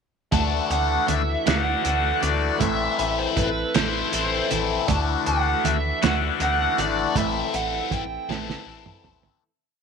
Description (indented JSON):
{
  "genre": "psychedelic rock",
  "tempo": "53 BPM (dotted quarters)",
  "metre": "6/8",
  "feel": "straight",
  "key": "A dorian",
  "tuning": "A4 = 440 Hz",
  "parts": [
    { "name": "fuzz lead guitar", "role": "melody", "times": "0.3-9.1 s", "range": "B4 to A5", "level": "-27 LUFS", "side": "right 3 dB", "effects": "wah, distortion, slapback echo" },
    { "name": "combo organ", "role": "sustained chords", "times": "0.3-9.4 s", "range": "C4 to A4", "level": "-35 LUFS", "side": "right 14 dB", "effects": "none" },
    { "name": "biting overdriven guitar", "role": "riff", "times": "0.3-9.4 s", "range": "D3 to F#4", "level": "-25 LUFS", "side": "left 13 dB", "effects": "phaser" },
    { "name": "metallic FM bass", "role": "bass", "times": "0.3-9.3 s", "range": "G#1 to D2", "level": "-28 LUFS", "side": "equal", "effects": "none" },
    { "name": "pedal harmonium", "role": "drone", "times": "0.3-9.5 s", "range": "E3 to A3", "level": "-34 LUFS", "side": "left 2 dB", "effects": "none" },
    { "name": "cloth-damped thuddy drum kit", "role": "drums", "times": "0.3-9.4 s", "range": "hi-hat, kick drum, snare drum, toms", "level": "-26 LUFS", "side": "right 5 dB", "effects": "none" },
    { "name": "congas", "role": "percussion", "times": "0.3-9.4 s", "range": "none", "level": "-32 LUFS", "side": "right 16 dB", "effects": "none" }
  ],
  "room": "light reverb",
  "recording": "1960s-style stereo with parts hard left and right",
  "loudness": "-20 LUFS",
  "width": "side -6 dB against mid",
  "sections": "0.3-9.4 groove",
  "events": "fade-out 7.2-9.4; drum fill 8.3-9.4",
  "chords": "0.3 Dadd9; 2.6 Am; 4.9 Dadd9; 7.2 Am",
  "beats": "| 0.33 1.47 | 2.61 3.75 | 4.89 6.02 | 7.16 8.29"
}